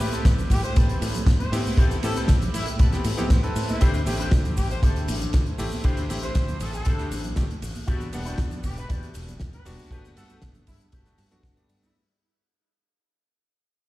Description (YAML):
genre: nu-disco, nu disco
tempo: 118 BPM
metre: 4/4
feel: straight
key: A dorian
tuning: A4 = 440 Hz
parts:
  - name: bright electric grand piano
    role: accompaniment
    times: 0.0-11.9 s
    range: G3 to F#5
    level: -33 LUFS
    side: left 1 dB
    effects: sidechain pumping
  - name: fingered electric bass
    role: bass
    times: 0.0-11.9 s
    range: E1 to A2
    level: -28 LUFS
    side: equal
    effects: none
  - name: loose indie drum kit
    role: drums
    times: 0.0-11.9 s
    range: cabasa, hi-hat, ride cymbal, snare drum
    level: -33 LUFS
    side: equal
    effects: none
  - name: congas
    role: percussion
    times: 0.0-11.9 s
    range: none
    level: -37 LUFS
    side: right 3 dB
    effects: none
  - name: electric guitar with an envelope filter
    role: riff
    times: 0.1-11.9 s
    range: C4 to A5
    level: -35 LUFS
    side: left 3 dB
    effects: analog chorus
  - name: kick drum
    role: drums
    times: 0.3-11.5 s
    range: none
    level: -22 LUFS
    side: equal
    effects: none
  - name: clear trumpet section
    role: melody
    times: 0.5-11.9 s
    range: E4 to C5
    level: -36 LUFS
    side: left 1 dB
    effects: analog delay
room: studio ambience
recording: played on a big sound system in a bare room, stone room reverb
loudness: -21 LUFS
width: side -17 dB against mid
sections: 0.0-11.9 A section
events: drop 0.0-11.9; fade-out 3.8-11.9; clean electric guitar fill 10.9-11.9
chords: 0.0 Am9; 3.8 D9sus4; 7.9 Em9; 9.9 Gmaj9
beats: 0.25 0.76 1.27 | 1.78 2.29 2.79 3.30 | 3.81 4.32 4.83 5.34 | 5.85 6.36 6.86 7.37 | 7.88 8.39 8.90 9.41 | 9.91 10.42 10.93 11.44